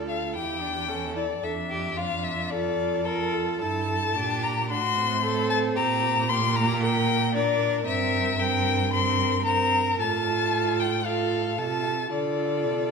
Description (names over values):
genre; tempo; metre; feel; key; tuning
quick classical-period movement for string quartet; 112 BPM; 4/4; rubato; D minor, F major from 7.9 s; A4 = 437 Hz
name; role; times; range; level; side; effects
warm violin; melody; 0.0-12.9 s; A4 to C6; -26 LUFS; left 7 dB; none
rich violin; second line; 0.0-12.9 s; F4 to Bb4; -31 LUFS; equal; none
dark viola; accompaniment; 0.0-12.9 s; Bb3 to F4; -30 LUFS; right 7 dB; none
warm cello; bass; 0.0-12.9 s; D2 to D3; -30 LUFS; right 4 dB; none
room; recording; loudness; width
wet scoring stage reverb, RT60 1.5 s; minimal, uncompressed stereo recording; -23 LUFS; side -5 dB against mid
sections
0.0-12.9 A section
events
none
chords
0.4 A7/E; 1.4 Dm/F; 3.6 Gm; 4.7 D7/A (rootless); 5.8 Gm/Bb; 7.9 C7/G; 10.0 F/A; 12.1 Dm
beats
0.36 0.90 | 1.44 1.98 2.52 3.06 | 3.62 4.17 4.70 5.24 | 5.77 6.30 6.83 7.35 | 7.87 8.40 8.93 9.46 | 10.00 10.53 11.05 11.58 | 12.12 12.65